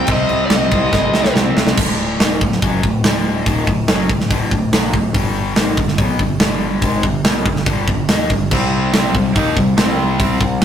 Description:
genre	heavy metal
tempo	142 BPM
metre	4/4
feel	straight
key	D phrygian dominant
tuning	A4 = 440 Hz
part	bluesy overdriven lead guitar	melody	0.0-1.3 s	D5 to G5	-18 LUFS	equal	distortion
part	distorted electric guitar	riff	0.0-10.6 s	D2 to Eb4	-19 LUFS	left 2 dB	distortion
part	high-gain distorted guitar	riff	0.0-1.8, 8.5-10.6 s	C3 to Eb4	-21 LUFS	right 4 dB	distortion
part	growling picked electric bass	bass	0.0-10.6 s	D1 to Eb2	-24 LUFS	equal	overdrive
part	tight metal drum kit	drums	0.1-10.6 s	crash cymbal, hi-hat, kick drum, snare drum	-16 LUFS	equal	none
room	moderate booth ambience, RT60 0.2 s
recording	rough rehearsal-room recording, tube saturation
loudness	-13 LUFS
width	side -9 dB against mid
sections	0.0-1.8 A section; 1.8-10.6 B section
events	drum fill 0.9-1.8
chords	0.0 Cm; 1.8 D; 5.1 G5; 8.5 C5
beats	| 0.09 0.52 0.94 1.36 | 1.78 2.20 2.62 3.04 | 3.46 3.88 4.30 4.72 | 5.14 5.57 5.99 6.41 | 6.83 7.25 7.67 8.09 | 8.51 8.93 9.36 9.78 | 10.20 10.62

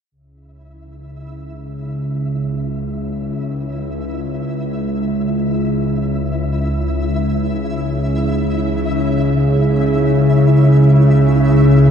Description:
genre	dark ambient drone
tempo	free time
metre	none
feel	none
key	C# minor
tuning	A4 = 440 Hz
part	bowed-like drone	drone	1.0-11.9 s	C#2 to C#3	-14 LUFS	equal	built-in reverb
part	flickering grainy texture	texture	0.8-11.9 s	E4 to E5	-25 LUFS	right 1 dB	built-in reverb, shimmer reverb
room	wet cathedral reverb, RT60 6.8 s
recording	none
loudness	-14 LUFS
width	side -8 dB against mid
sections	0.1-11.9 A section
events	fade-in on synth texture 0.1-11.9; filter sweep on synth drone 0.1-11.9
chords	0.1 C#m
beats	free time

